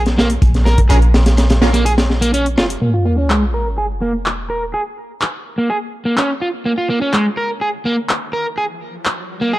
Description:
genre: breakbeat, breaks.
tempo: 125 BPM.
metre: 4/4.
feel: straight.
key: Bb minor.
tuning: A4 = 443 Hz.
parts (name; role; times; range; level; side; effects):
warm 808-style bass; bass; 0.0-2.8 s; F1 to Bb1; -14 LUFS; equal; tube saturation.
crunchy breakbeat drum kit; drums; 0.1-2.7 s; hi-hat, kick drum, snare drum; -16 LUFS; equal; none.
punchy analog drum machine; drums; 0.1-9.2 s; handclaps, hi-hat; -22 LUFS; equal; none.
crunchy overdriven guitar; riff; 0.2-9.6 s; Ab3 to Bb4; -18 LUFS; right 1 dB; tube saturation, vintage 12-bit sampler grit, low-pass filter, tape echo.
orchestra-hit-like synth stab; stabs; 0.9-1.7 s; Bb3 to Bb4; -24 LUFS; right 1 dB; built-in reverb, tape echo.
sub drop and riser; sound effects; 2.8-9.6 s; none; -22 LUFS; equal; none.
room: light reverb.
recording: dark, warm production.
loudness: -14 LUFS.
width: side -16 dB against mid.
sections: 0.0-2.8 A section; 2.8-9.6 B section.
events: impact 2.8-4.7; filter sweep on overdriven electric guitar 2.8-9.6; riser 7.8-9.6.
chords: 0.0 Bbm; 2.8 N.C..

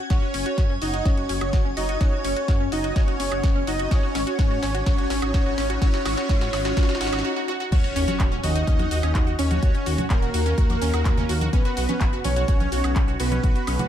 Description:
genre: progressive house.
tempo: 126 BPM.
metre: 4/4.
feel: straight.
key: unclear.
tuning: A4 = 441 Hz.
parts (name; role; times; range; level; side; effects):
drifting glass-harmonics texture; texture; 0.0-7.2 s; G#6; -41 LUFS; right 2 dB; chorus, built-in reverb, sidechain pumping.
soft supersaw; melody; 0.1-13.8 s; A#3 to D#5; -26 LUFS; equal; cassette tape, dub echo.
wide unison pluck; arpeggios; 0.1-13.9 s; C#4 to F#4; -30 LUFS; right 1 dB; phaser, sidechain pumping, dub echo.
dark detuned saw bass; bass; 0.1-13.8 s; D#1 to G#2; -27 LUFS; equal; sidechain pumping.
electronic kick drum; drums; 0.1-13.5 s; none; -21 LUFS; equal; none.
house drum kit; drums; 0.1-13.9 s; cabasa, crash cymbal, handclaps, hi-hat, snare drum, toms, woodblock; -33 LUFS; equal; sidechain pumping on hats, high-pass filter on hats, sidechain pumping on perc, high-pass filter on perc, high-pass filter on snare, sidechain pumping on toms, high-pass filter on toms, sidechain pumping on cymbals, high-pass filter on cymbals.
riser, swell and impact; sound effects; 1.9-9.6 s; none; -35 LUFS; equal; none.
congas and woodblock; percussion; 8.1-13.9 s; none; -32 LUFS; equal; sidechain pumping on perc.
room: light reverb.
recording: none.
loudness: -20 LUFS.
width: side -10 dB against mid.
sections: 0.0-7.7 A section; 7.7-13.9 B section.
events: build-up 0.0-7.7; filter sweep on synth pluck 0.0-7.7; drum fill 0.1-7.2, 7.4-7.7; riser 1.9-7.2; swell 6.8-7.7; break 7.2-7.7; drop 7.7-13.9; impact 7.7-9.6.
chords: 0.1 F#sus2; 3.9 G#7sus4; 7.7 D#m7; 11.5 B5.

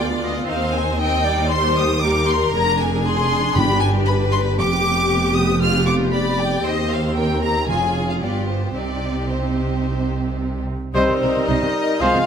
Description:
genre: quick classical-period movement for symphony orchestra.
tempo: 115 BPM.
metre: 4/4.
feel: rubato.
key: C minor.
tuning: A4 = 441 Hz.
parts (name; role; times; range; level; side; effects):
rich chamber violin section; melody; 0.0-12.3 s; C5 to F6; -23 LUFS; left 2 dB; none.
clear chamber violin section; second line; 0.0-12.3 s; F4 to Eb5; -26 LUFS; left 3 dB; none.
rich chamber viola section; accompaniment; 0.0-12.3 s; C3 to Ab4; -25 LUFS; equal; none.
rich chamber double bass section; bass; 0.0-12.1 s; F1 to Eb2; -24 LUFS; right 2 dB; none.
warm chamber cello section; bass; 0.0-12.2 s; D2 to C3; -25 LUFS; right 3 dB; none.
timpani; percussion; 3.6-4.3 s; G2; -23 LUFS; left 1 dB; none.
dark cor anglais; second line; 10.9-12.3 s; Eb5 to F5; -28 LUFS; equal; none.
warm clarinet; second line; 10.9-12.3 s; C4 to F4; -25 LUFS; left 2 dB; none.
bright trumpet; stabs; 10.9-12.2 s; C5; -23 LUFS; right 1 dB; none.
mellow hollow silver concert flute; second line; 11.0-12.3 s; C5 to F5; -26 LUFS; left 1 dB; none.
clear bassoon; accompaniment; 11.0-12.3 s; G3 to Ab3; -25 LUFS; right 2 dB; none.
clear French horn section; sustained chords; 11.0-12.2 s; G3 to F4; -25 LUFS; left 3 dB; none.
room: light reverb.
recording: close, detailed microphones.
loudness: -17 LUFS.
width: side -7 dB against mid.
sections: 0.0-10.9 A section; 10.9-12.3 A section.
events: none.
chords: 0.5 Cm/Eb; 2.5 Dm7b5/F; 3.6 G; 4.6 G7/F; 6.6 Cm/Eb; 7.7 Db/F; 8.2 G7; 8.8 Cm.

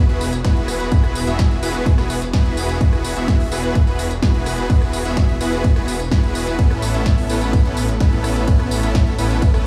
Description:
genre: EDM, festival progressive house.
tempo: 127 BPM.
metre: 4/4.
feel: straight.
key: E major.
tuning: A4 = 440 Hz.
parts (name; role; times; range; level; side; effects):
supersaw chords; riff; 0.0-9.7 s; B3 to E5; -25 LUFS; equal; sidechain pumping, dub echo.
detuned saw bass; bass; 0.0-9.7 s; E1 to A1; -26 LUFS; equal; chorus, sidechain pumping.
big-room dance drum kit; drums; 0.1-9.6 s; hi-hat, ride cymbal, rim click, snare drum, tambourine; -30 LUFS; equal; overdrive.
electronic kick drum; drums; 0.4-9.5 s; none; -18 LUFS; equal; overdrive.
room: little or no reverb.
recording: small room reverb.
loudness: -18 LUFS.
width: mono.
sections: 0.0-9.7 A section.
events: none.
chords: 0.0 Eadd9; 6.6 Aadd9.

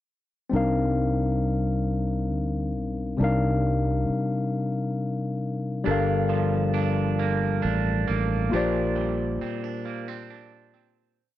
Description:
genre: slow six-eight R&B.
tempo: 45 BPM (dotted quarters).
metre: 6/8.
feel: straight.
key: C dorian.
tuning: A4 = 438 Hz.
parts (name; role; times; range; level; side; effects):
barky tine electric piano; accompaniment; 0.5-11.2 s; C3 to F5; -26 LUFS; left 3 dB; overdrive.
fingered electric bass; bass; 0.5-9.5 s; G1 to D2; -26 LUFS; right 1 dB; none.
electric guitar at the edge of break-up; second line; 5.9-11.4 s; G2 to D4; -30 LUFS; right 10 dB; spring reverb.
room: little or no reverb.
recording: dry, close 1970s-style studio recording, tape saturation.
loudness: -23 LUFS.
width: side -13 dB against mid.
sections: 0.5-11.2 verse.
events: fade-out 8.5-11.2.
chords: 0.5 Cm11; 5.9 Gm7; 8.5 Bb69.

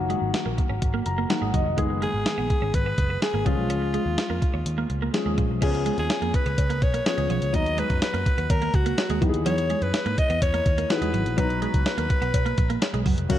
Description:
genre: 1980s-style pop.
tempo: 125 BPM.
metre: 4/4.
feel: straight.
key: unclear.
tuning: A4 = 440 Hz.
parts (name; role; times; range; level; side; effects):
dark baby grand piano; accompaniment; 0.0-13.4 s; D#3 to A#5; -30 LUFS; left 4 dB; none.
vintage muted picked electric bass; bass; 0.0-13.4 s; E#1 to G#2; -28 LUFS; equal; none.
twelve-string electric guitar; riff; 0.1-13.1 s; E#3 to C#4; -32 LUFS; right 6 dB; wide subtle chorus.
clean 12-bit digital drum machine; drums; 0.1-13.4 s; crash cymbal, hi-hat, kick drum, snare drum; -25 LUFS; equal; none.
raspy alto saxophone; melody; 2.0-13.4 s; E#4 to D#5; -28 LUFS; left 1 dB; ping-pong delay.
cowbell; percussion; 5.6-13.4 s; none; -38 LUFS; left 7 dB; none.
room: moderate lush hall reverb, RT60 2.1 s.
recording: dark, warm production.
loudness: -21 LUFS.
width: side -12 dB against mid.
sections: 0.0-5.6 A section; 5.6-13.3 B section.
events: grand piano fill 0.8-1.8.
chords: 0.0 D#m/F#; 1.8 G#m/F#; 3.5 C#; 5.6 C#7; 7.5 Bmaj7/D#; 9.2 Emaj7; 11.4 Bmaj7.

